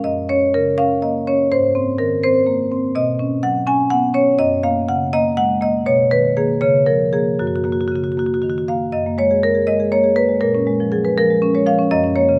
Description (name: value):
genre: classical, contemporary piece for solo marimba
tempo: 81 BPM (dotted quarters)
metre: 6/8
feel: straight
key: F# major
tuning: A4 = 439 Hz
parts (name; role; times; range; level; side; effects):
- marimba with medium hard mallets; solo; 0.0-12.4 s; F#2 to G#5; -17 LUFS; equal; none
room: moderate recital hall reverb, RT60 1.7 s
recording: close, detailed microphones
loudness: -17 LUFS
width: mono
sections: 0.0-8.9 A section; 8.9-12.4 A section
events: none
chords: 0.0 F#; 1.5 G#add9; 2.9 Badd9; 4.4 F#add9; 5.9 Bmaj7; 6.6 C#6; 7.4 F#6; 8.9 F#add9; 10.4 A#m7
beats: | 0.04 0.78 | 1.51 2.23 | 2.95 3.67 | 4.39 5.12 | 5.87 6.61 | 7.38 8.16 | 8.94 9.68 | 10.42 11.16 | 11.90